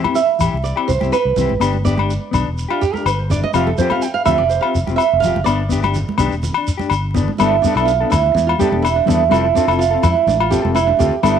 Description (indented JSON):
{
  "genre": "highlife guitar band",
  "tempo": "125 BPM",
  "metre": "4/4",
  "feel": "straight",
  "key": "G mixolydian",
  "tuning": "A4 = 442 Hz",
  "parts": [
    { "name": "mellow electric guitar", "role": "accompaniment", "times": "0.0-11.4 s", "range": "E3 to A4", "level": "-21 LUFS", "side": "left 7 dB", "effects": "harmonic tremolo" },
    { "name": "agogo bells", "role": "percussion", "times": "0.0-11.4 s", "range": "none", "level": "-22 LUFS", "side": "left 9 dB", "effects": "none" },
    { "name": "congas", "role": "percussion", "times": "0.0-11.1 s", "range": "none", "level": "-26 LUFS", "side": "right 4 dB", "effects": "none" },
    { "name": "flamenco guitar", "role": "arpeggios", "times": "0.2-11.4 s", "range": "D4 to G5", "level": "-17 LUFS", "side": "right 9 dB", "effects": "slapback echo" },
    { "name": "shekere", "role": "percussion", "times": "0.2-11.4 s", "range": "none", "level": "-25 LUFS", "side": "right 1 dB", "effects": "none" },
    { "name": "fingered electric bass", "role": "bass", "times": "0.4-11.4 s", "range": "E1 to F2", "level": "-20 LUFS", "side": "equal", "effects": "none" }
  ],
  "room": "light reverb, studio reverb",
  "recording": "1960s-style stereo with parts hard left and right, vinyl crackle",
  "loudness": "-14 LUFS",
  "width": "side -8 dB against mid",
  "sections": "0.0-7.4 A section; 7.4-11.4 B section",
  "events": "nylon-string guitar solo 0.0-7.4",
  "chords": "0.0 C; 1.6 G; 3.5 Fsus2; 5.5 G; 7.4 Gadd9; 9.3 Fadd9"
}